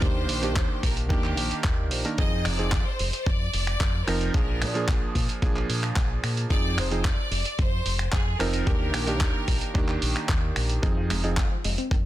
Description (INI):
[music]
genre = nu-disco, nu disco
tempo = 111 BPM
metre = 4/4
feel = straight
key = F dorian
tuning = A4 = 440 Hz
[part]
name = bright studio violin section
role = melody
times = 0.0-10.3 s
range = G4 to Eb5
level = -33 LUFS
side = left 1 dB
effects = ping-pong delay
[part]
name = clear electric grand piano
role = accompaniment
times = 0.0-11.4 s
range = Eb3 to Bb4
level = -30 LUFS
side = right 3 dB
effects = sidechain pumping, ping-pong delay
[part]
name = fingered electric bass with an envelope filter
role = bass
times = 0.0-12.1 s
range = F1 to Bb2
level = -28 LUFS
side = equal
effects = none
[part]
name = dusty soul sampler-style drum kit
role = drums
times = 0.0-12.0 s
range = finger snaps, handclaps, hi-hat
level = -31 LUFS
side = right 1 dB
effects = none
[part]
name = electronic kick drum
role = drums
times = 0.0-12.0 s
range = none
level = -25 LUFS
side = equal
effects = none
[part]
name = analog pluck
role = arpeggios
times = 10.8-12.0 s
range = Eb3 to Eb4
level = -34 LUFS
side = left 3 dB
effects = chorus, phaser, sidechain pumping, ping-pong delay
[sound]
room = digital ambience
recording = dense, heavily limited modern master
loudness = -23 LUFS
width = side -14 dB against mid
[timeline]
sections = 0.0-12.1 A section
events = none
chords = 0.0 Ebmaj7; 2.2 Fm7; 4.3 Bb7; 6.5 Fm7; 8.7 Ebmaj7; 10.8 Fm7